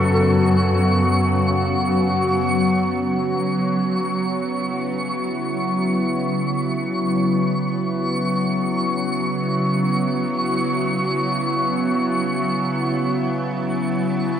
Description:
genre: ambient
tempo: free time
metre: none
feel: none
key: F# minor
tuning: A4 = 445 Hz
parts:
  - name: felt-muted upright piano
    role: melody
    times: 0.0-2.2 s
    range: A4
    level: -26 LUFS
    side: equal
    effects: tape echo
  - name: evolving wavetable pad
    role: sustained chords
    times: 0.0-14.4 s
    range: C#3 to F#4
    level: -21 LUFS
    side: equal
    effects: chorus, built-in reverb
  - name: dark symphonic cello section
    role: bass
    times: 0.0-3.0 s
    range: F#2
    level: -22 LUFS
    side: left 1 dB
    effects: none
  - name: bowed-like drone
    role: drone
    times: 0.0-14.4 s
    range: F#3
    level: -27 LUFS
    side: right 1 dB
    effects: built-in reverb, phaser
  - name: twinkling granular texture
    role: texture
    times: 0.0-14.4 s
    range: C#6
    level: -26 LUFS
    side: equal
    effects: built-in reverb
room: wet concert hall reverb, RT60 2.1 s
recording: none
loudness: -18 LUFS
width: side -9 dB against mid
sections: 0.0-3.0 A section; 3.0-14.4 B section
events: none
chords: 0.0 A/F#; 3.0 F#5

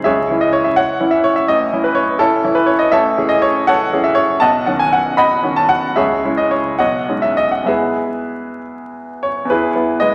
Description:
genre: classical, romantic character piece for solo piano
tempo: 64-86 BPM (dotted quarters)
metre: 6/8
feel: rubato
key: E major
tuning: A4 = 441 Hz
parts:
  - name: bright grand piano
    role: solo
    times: 0.0-10.1 s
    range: A1 to B5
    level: -16 LUFS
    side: equal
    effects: none
room: wet recital hall reverb, RT60 1.5 s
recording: vinyl crackle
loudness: -15 LUFS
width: mono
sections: 0.0-9.5 A section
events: none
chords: 0.1 C#m; 1.5 A; 2.9 Amaj7; 4.4 Badd9; 6.0 C#m; 6.8 B69; 7.7 E

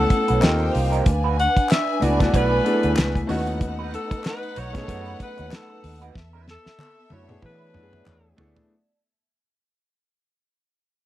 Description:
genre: lush 1970s-style soul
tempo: 94 BPM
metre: 4/4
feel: swing 58% on 16ths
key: unclear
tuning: A4 = 440 Hz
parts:
  - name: breathy alto saxophone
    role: melody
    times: 0.0-8.4 s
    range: A4 to F#5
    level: -25 LUFS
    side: equal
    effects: none
  - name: warm studio string section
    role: second line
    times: 0.0-8.7 s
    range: B3 to G#5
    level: -30 LUFS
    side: equal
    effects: tape echo
  - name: bright concert grand piano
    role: accompaniment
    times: 0.0-8.7 s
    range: A3 to A4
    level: -26 LUFS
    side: left 2 dB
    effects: none
  - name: electric guitar through a small old amp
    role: riff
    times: 0.0-8.6 s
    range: G3 to C#5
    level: -30 LUFS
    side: right 8 dB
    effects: wah
  - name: vintage muted fingered electric bass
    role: bass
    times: 0.0-8.5 s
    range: B1 to E3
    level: -25 LUFS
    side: equal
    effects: none
  - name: vibraphone with hard mallets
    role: texture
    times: 0.0-9.0 s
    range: E4 to F#5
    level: -33 LUFS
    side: equal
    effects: none
  - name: damped 70s drum kit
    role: drums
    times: 0.1-8.7 s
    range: hi-hat, kick drum, snare drum, toms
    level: -22 LUFS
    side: equal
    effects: none
  - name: group handclap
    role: percussion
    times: 0.4-8.2 s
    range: none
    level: -35 LUFS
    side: left 2 dB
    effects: none
room: little or no reverb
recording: dry, close 1970s-style studio recording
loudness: -19 LUFS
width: side -14 dB against mid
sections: 0.0-8.7 A section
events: fade-out 0.0-8.7; drum fill 6.2-8.7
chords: 0.4 D#6; 1.1 D6; 3.3 B7; 6.2 E7sus4

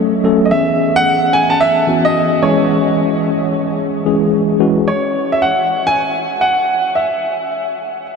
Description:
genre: R&B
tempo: 110 BPM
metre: 4/4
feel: swing 64% on 16ths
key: C# minor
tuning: A4 = 440 Hz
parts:
  - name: warm baby grand piano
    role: melody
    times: 0.0-8.0 s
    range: C#5 to A5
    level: -15 LUFS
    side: right 1 dB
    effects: ping-pong delay
  - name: mellow tine electric piano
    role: accompaniment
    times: 0.0-4.9 s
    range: E3 to A4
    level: -15 LUFS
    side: left 1 dB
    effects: medium stereo tremolo
room: wet huge ambient reverb, RT60 8.1 s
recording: dreamy mix soaked in reverb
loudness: -12 LUFS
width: side -5 dB against mid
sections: 0.0-4.9 A section; 4.9-8.2 B section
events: none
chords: 0.0 F#m; 0.5 C#m7; 2.4 C#m; 4.9 N.C.

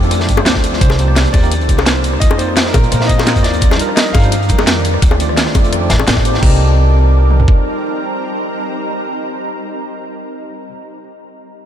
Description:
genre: liquid drum and bass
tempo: 171 BPM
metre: 4/4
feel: straight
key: C dorian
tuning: A4 = 440 Hz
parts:
  - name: tine electric piano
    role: accompaniment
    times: 0.0-10.7 s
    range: G3 to Eb5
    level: -22 LUFS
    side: equal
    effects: medium stereo tremolo, diffuse ambient delay
  - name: shimmering ambient pad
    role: sustained chords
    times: 0.0-10.0 s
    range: Eb3 to D5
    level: -21 LUFS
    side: equal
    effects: chorus, built-in reverb, sidechain pumping
  - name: upright bass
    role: bass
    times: 0.0-7.4 s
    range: A1 to Bb2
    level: -14 LUFS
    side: equal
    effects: tube saturation
  - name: crunchy breakbeat drum kit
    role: drums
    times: 0.0-6.4 s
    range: hi-hat, snare drum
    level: -22 LUFS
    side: equal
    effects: high-pass filter on hats, high-pass filter on snare, high-pass filter on room
  - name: drum and bass drum kit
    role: drums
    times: 0.1-6.5 s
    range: crash cymbal, hi-hat, rim click, snare drum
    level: -19 LUFS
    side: equal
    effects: none
  - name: drum and bass drum kit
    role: drums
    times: 0.3-7.6 s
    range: kick drum, toms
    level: -13 LUFS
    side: equal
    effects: none
  - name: bongos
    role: percussion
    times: 0.4-6.1 s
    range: none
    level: -24 LUFS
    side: left 6 dB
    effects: none
  - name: bright concert grand piano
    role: melody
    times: 0.8-4.5 s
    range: Bb4 to F5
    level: -24 LUFS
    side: equal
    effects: ping-pong delay
room: light reverb, studio reverb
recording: none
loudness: -10 LUFS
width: side -10 dB against mid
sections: 0.0-6.4 A section; 6.4-9.2 B section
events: drop 0.0-6.4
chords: 0.0 Dm7; 0.8 Cm7; 2.2 F7sus4; 3.6 Ebmaj9; 5.0 Dm7; 6.4 Cm7

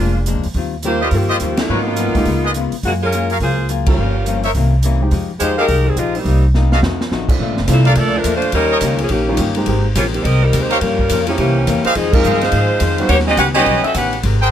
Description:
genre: jazz, big band swing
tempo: 210 BPM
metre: 4/4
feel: swing 62% on 8ths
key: F minor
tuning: A4 = 436 Hz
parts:
  - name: warm saxophone section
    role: melody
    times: 0.0-14.2 s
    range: Db3 to F#5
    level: -17 LUFS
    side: equal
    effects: none
  - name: archtop guitar, miked and amplified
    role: accompaniment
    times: 0.0-14.4 s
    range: F2 to Bb4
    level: -24 LUFS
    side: left 8 dB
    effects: none
  - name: upright bass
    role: bass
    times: 0.0-14.5 s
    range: F1 to Ab2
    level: -17 LUFS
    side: equal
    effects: none
  - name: swinging big-band drum kit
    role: drums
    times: 0.3-14.3 s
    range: crash cymbal, hi-hat, kick drum, ride cymbal, snare drum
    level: -22 LUFS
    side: equal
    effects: none
  - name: warm grand piano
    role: accompaniment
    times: 0.8-5.1, 7.3-13.7 s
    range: Bb2 to G4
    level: -22 LUFS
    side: right 2 dB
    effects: none
  - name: clear trumpet section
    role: stabs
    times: 1.0-14.5 s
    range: F4 to G5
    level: -19 LUFS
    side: equal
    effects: none
room: light reverb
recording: close, detailed microphones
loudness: -13 LUFS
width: side -10 dB against mid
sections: 0.0-7.4 A section; 7.4-14.5 B section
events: band accent 1.6, 3.8, 12.1; drum fill 6.5-7.1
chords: 0.0 Bb7; 0.6 Eb69; 1.7 Abm11; 2.3 Db7; 2.8 Gbmaj9; 4.0 Gm7b5; 4.5 C7b9; 5.1 Fm9; 6.3 Cm7; 6.8 F7b9; 7.4 Bbmaj7; 8.5 Eb7; 9.7 Abmaj9; 10.8 Gm7b5; 11.4 C7b9; 12.0 Fm7; 13.1 Eb7alt

